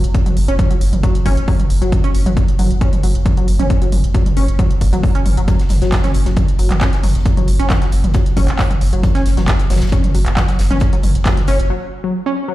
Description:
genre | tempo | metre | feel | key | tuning
driving peak-time techno | 135 BPM | 4/4 | straight | unclear | A4 = 439 Hz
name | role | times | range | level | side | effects
saturated sub bass | bass | 0.0-11.7 s | F#1 | -17 LUFS | equal | overdrive, sidechain pumping, low-pass filter
techno drum kit | drums | 0.0-11.7 s | handclaps, hi-hat, toms | -23 LUFS | right 2 dB | none
electronic kick drum | drums | 0.1-11.3 s | none | -16 LUFS | equal | none
tight sequenced synth | riff | 0.3-12.5 s | F#3 to C#4 | -22 LUFS | left 1 dB | chorus, tube saturation, sidechain pumping, tape echo
huge arena drum kit | drums | 5.5-11.6 s | hi-hat, snare drum | -34 LUFS | left 1 dB | high-pass filter on hats, high-pass filter on snare, high-pass filter on room
room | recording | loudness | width
little or no reverb | played on a big sound system in a bare room, large studio reverb | -13 LUFS | side -16 dB against mid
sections
0.0-12.5 A section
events
break 11.7-12.5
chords
0.0 F#5

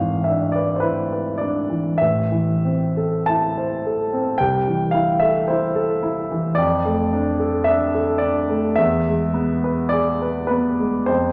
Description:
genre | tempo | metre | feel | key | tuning
classical, romantic nocturne for solo piano | 45-56 BPM | 4/4 | rubato | A minor | A4 = 440 Hz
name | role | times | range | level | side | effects
warm grand piano | solo | 0.0-11.3 s | G#1 to A5 | -20 LUFS | equal | none
room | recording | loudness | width
wet recital hall reverb, RT60 1.4 s | nothing above 10.5 kHz | -20 LUFS | mono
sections
0.0-11.3 A section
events
none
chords
0.0 E7/G#; 2.0 Am; 4.4 Am/C; 6.6 Dm/F; 8.8 E

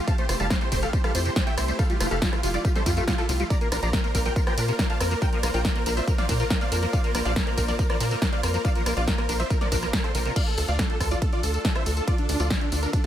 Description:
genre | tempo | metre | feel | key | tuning
uplifting trance | 140 BPM | 4/4 | straight | unclear | A4 = 440 Hz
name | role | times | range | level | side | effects
dense compressed supersaw | melody | 0.0-13.1 s | D4 to Bb5 | -29 LUFS | equal | vintage 12-bit sampler grit, sidechain pumping, tape echo
supersaw pad | sustained chords | 0.0-13.1 s | A3 to D5 | -33 LUFS | right 2 dB | sidechain pumping
liquid acid bass | arpeggios | 0.1-10.3 s | C3 to G4 | -34 LUFS | left 2 dB | ensemble chorus, sidechain pumping, digital delay
electronic kick drum | drums | 0.1-13.0 s | none | -25 LUFS | equal | overdrive
punchy analog drum machine | drums | 0.1-13.1 s | crash cymbal, hi-hat, ride cymbal, rim click, snare drum, tambourine | -30 LUFS | equal | none
tight sequencer bass | bass | 0.3-12.9 s | F1 to Bb2 | -27 LUFS | equal | sidechain pumping
room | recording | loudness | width
digital ambience | none | -22 LUFS | side -11 dB against mid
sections
0.0-10.4 A section; 10.4-13.1 A section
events
drop 0.0-10.4, 10.4-13.1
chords
0.0 Fadd9; 3.5 Bbadd9; 10.4 Dm

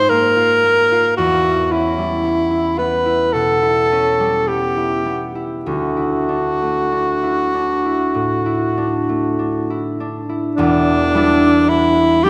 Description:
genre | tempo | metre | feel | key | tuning
classical, impressionist duo for alto saxophone and harp | 48-57 BPM | 4/4 | rubato | E dorian | A4 = 441 Hz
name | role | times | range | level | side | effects
clear alto saxophone | melody | 0.0-12.3 s | D4 to B#4 | -18 LUFS | equal | none
concert harp | accompaniment | 0.0-12.3 s | E1 to E#4 | -22 LUFS | equal | none
room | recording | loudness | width
moderate scoring stage reverb, RT60 2.0 s | none | -17 LUFS | mono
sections
0.0-10.6 A section; 10.6-12.3 B section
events
none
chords
0.0 G#sus2; 1.2 Em6; 5.7 Dadd9; 10.6 Em7

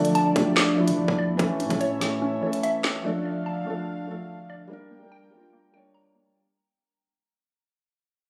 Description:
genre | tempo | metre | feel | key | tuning
hip hop, drill | 145 BPM | 4/4 | half-time | D harmonic minor | A4 = 442 Hz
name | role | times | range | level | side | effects
felt-muted upright piano | accompaniment | 0.0-6.4 s | E3 to C#5 | -28 LUFS | equal | none
warm analog pad | sustained chords | 0.0-6.3 s | D3 to G5 | -35 LUFS | equal | chorus
hollow square pluck | arpeggios | 0.0-6.4 s | A3 to Bb5 | -32 LUFS | equal | chorus, tape echo
growling 808-style bass | bass | 0.0-2.4 s | A1 to F3 | -35 LUFS | equal | none
drill drum kit | drums | 0.0-2.9 s | handclaps, hi-hat, kick drum, snare drum | -28 LUFS | equal | none
room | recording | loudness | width
light reverb, digital ambience | recorded on a phone in the room, studio reverb | -25 LUFS | mono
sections
0.0-6.4 A section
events
fade-out 0.0-6.4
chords
0.0 Dm; 1.4 A; 3.0 Dm; 4.7 Gm

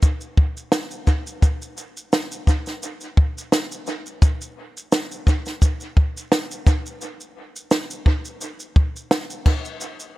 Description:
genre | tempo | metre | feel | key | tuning
pop | 86 BPM | 4/4 | swing 55% on 16ths | none | none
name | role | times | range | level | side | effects
compact cocktail drum kit | drums | 0.0-10.1 s | crash cymbal, kick drum, shaker, snare drum | -18 LUFS | equal | dub echo
room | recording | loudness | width
little or no reverb | echo-heavy mix | -19 LUFS | side -18 dB against mid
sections
0.0-10.2 A section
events
none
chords
none

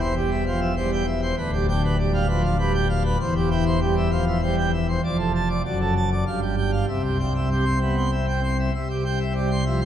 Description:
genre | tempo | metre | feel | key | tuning
classical, organ toccata | 98 BPM | 3/4 | straight | C major | A4 = 440 Hz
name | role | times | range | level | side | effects
pipe organ, plenum | solo | 0.0-9.8 s | D1 to C6 | -20 LUFS | equal | none
room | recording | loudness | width
wet cathedral reverb, RT60 4.4 s | none | -20 LUFS | side -10 dB against mid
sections
0.0-8.7 A section; 8.7-9.8 B section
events
none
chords
0.0 C/E; 1.4 G7/D; 3.2 C/E; 5.0 Dm/F; 5.6 D/F#; 6.3 Fsus2/G; 6.9 C

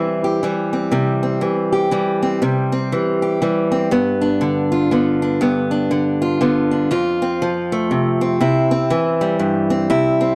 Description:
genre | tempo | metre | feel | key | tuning
country | 120 BPM | 3/4 | swing 60% on 8ths | C major | A4 = 440 Hz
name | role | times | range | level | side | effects
picked acoustic archtop guitar | solo | 0.0-10.3 s | F2 to G4 | -18 LUFS | equal | analog delay
room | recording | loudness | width
moderate studio reverb, RT60 0.9 s | dark, warm production | -18 LUFS | mono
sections
0.0-6.9 A section; 6.9-10.3 B section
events
none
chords
0.0 C; 3.9 G; 6.9 F; 8.4 C

